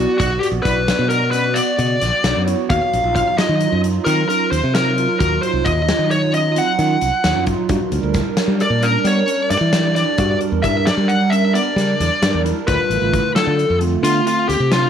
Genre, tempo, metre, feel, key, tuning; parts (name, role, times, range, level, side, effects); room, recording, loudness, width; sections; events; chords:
progressive instrumental, band music in an uneven meter; 264 BPM (eighths); 11/8; straight; A4 = 440 Hz
smooth overdriven lead guitar; melody; 0.0-14.9 s; F4 to F#5; -18 LUFS; left 1 dB
hollow soft pad; accompaniment; 0.0-14.9 s; D3 to D5; -23 LUFS; right 12 dB; chorus
tine electric piano; arpeggios; 0.0-14.9 s; C#3 to F#4; -27 LUFS; left 13 dB; medium stereo tremolo
modern bright fingered electric bass; bass; 0.0-14.9 s; A1 to G3; -19 LUFS; equal
big rock drum kit; drums; 0.2-14.8 s; hi-hat, kick drum, snare drum; -23 LUFS; left 1 dB
light reverb; 1960s-style stereo with parts hard left and right; -15 LUFS; side -8 dB against mid
0.0-14.9 A section
0.0 Bm; 2.7 D#madd9; 7.7 Gm; 12.7 Dm